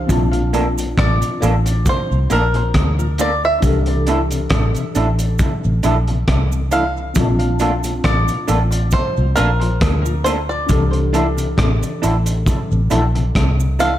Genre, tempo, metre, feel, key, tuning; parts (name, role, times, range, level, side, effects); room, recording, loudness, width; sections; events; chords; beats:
lovers rock reggae; 68 BPM; 4/4; swing 55% on 16ths; C mixolydian; A4 = 443 Hz
bluegrass banjo; melody; 0.0-14.0 s; Bb4 to F5; -22 LUFS; equal; tape echo
tine electric piano; accompaniment; 0.0-14.0 s; E3 to A5; -26 LUFS; left 2 dB; ensemble chorus
vintage muted fingered electric bass; bass; 0.0-14.0 s; A1 to D2; -18 LUFS; equal
crunchy breakbeat drum kit; drums; 0.1-14.0 s; hi-hat, kick drum, rim click; -20 LUFS; equal; gated reverb
cabasa; percussion; 0.1-14.0 s; -34 LUFS; right 12 dB; tape echo
mellow tonewheel organ; accompaniment; 0.3-13.9 s; Bb2 to D4; -27 LUFS; left 4 dB; slow rotary speaker, tape echo
electric guitar through a small old amp; stabs; 0.5-13.9 s; Bb3 to A4; -24 LUFS; right 3 dB; analog chorus, tape echo
light reverb, studio reverb; -14 LUFS; side -12 dB against mid
0.0-14.0 A section
0.1 Bbmaj7; 3.6 C69; 7.2 Bbmaj7; 10.7 C69
| 0.09 0.97 1.86 2.74 | 3.63 4.51 5.39 6.28 | 7.16 8.05 8.93 9.81 | 10.70 11.58 12.47 13.35